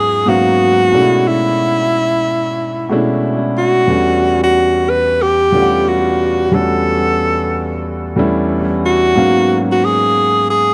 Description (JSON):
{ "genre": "R&B", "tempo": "91 BPM", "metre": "4/4", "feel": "swing 61% on 16ths", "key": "unclear", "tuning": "A4 = 440 Hz", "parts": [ { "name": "breathy tenor saxophone", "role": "melody", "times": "0.0-10.7 s", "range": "E4 to B4", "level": "-16 LUFS", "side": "equal", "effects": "none" }, { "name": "warm concert grand piano", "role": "accompaniment", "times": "0.0-10.7 s", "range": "E2 to F#5", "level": "-18 LUFS", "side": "equal", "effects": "dub echo" } ], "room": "moderate spring reverb, RT60 1.2 s", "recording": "echo-heavy mix", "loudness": "-14 LUFS", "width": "mono", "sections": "0.0-10.7 A section", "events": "none", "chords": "0.0 G#m11; 0.9 Bm11; 3.9 Em11; 9.1 G#m11", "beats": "0.58 | 1.24 1.90 2.56 3.21 | 3.88 4.53 5.19 5.85 | 6.51 7.17 7.83 8.49 | 9.15 9.81 10.47" }